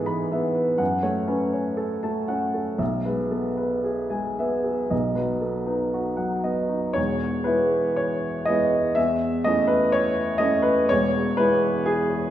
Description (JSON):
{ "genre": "classical, romantic character piece for solo piano", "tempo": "56-64 BPM", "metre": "4/4", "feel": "rubato", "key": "E major", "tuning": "A4 = 439 Hz", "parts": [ { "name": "warm baby grand piano", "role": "solo", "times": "0.0-12.3 s", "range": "E1 to B5", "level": "-21 LUFS", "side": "equal", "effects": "none" } ], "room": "wet recital hall reverb, RT60 1.8 s", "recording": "heard from further back in the room", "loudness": "-21 LUFS", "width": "side -11 dB against mid", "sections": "0.0-7.0 A section; 7.0-12.3 B section", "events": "none", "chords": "0.0 E/G#; 0.8 F#m; 2.8 E/B; 4.9 B; 7.0 E; 9.0 A/E; 10.9 E", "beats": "0.80 1.77 | 2.79 3.85 4.92 5.95 | 6.97 7.98 8.97 9.92 | 10.89 11.86" }